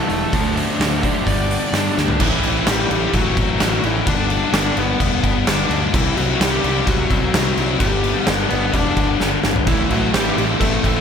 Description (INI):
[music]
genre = quiet-loud alternative rock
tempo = 128 BPM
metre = 4/4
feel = straight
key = A dorian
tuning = A4 = 440 Hz
[part]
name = bluesy overdriven lead guitar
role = melody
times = 0.0-11.0 s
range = E3 to A5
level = -23 LUFS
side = right 1 dB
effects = distortion, slapback echo
[part]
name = sludgy distorted guitar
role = riff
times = 0.0-2.2, 9.7-11.0 s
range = E2 to E4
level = -25 LUFS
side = right 12 dB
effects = overdrive
[part]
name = thick fuzz guitar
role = riff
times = 0.0-11.0 s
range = G2 to E4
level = -22 LUFS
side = left 10 dB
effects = distortion
[part]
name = fuzz picked electric bass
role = bass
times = 0.1-11.0 s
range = E1 to G2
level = -23 LUFS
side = right 1 dB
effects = overdrive
[part]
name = oversized low-tuned drum kit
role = drums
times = 0.1-11.0 s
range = crash cymbal, hi-hat, kick drum, snare drum, toms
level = -19 LUFS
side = equal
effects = none
[sound]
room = moderate lush hall reverb, RT60 2.1 s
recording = big arena sound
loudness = -15 LUFS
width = side -7 dB against mid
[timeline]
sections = 0.0-2.2 A section; 2.2-11.0 B section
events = lead electric guitar solo 0.0-2.2; drum fill 2.0, 9.2-9.7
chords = 0.3 D; 1.3 G; 2.2 Am; 4.1 G; 5.9 C; 7.8 G; 9.7 Am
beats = | 0.34 0.81 1.27 1.74 | 2.21 2.68 3.15 3.61 | 4.08 4.55 5.01 5.48 | 5.95 6.41 6.88 7.35 | 7.81 8.28 8.75 9.21 | 9.68 10.15 10.61